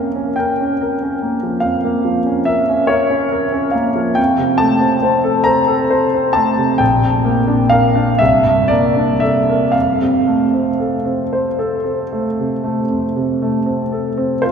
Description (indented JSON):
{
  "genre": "classical, romantic nocturne for solo piano",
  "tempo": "38-49 BPM (dotted quarters)",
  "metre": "12/8",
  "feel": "rubato",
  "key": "F major",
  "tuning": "A4 = 441 Hz",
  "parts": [
    { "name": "warm concert grand piano", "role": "solo", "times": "0.0-14.5 s", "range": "Bb1 to Bb5", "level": "-13 LUFS", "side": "equal", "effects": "none" }
  ],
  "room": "wet church reverb, RT60 4.0 s",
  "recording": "minimal, uncompressed stereo recording",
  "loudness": "-13 LUFS",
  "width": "side -6 dB against mid",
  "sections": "0.0-14.5 A section",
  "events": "none",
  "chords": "0.0 Bbm/F; 4.2 F; 6.8 Bb; 8.2 Csus2; 9.7 F"
}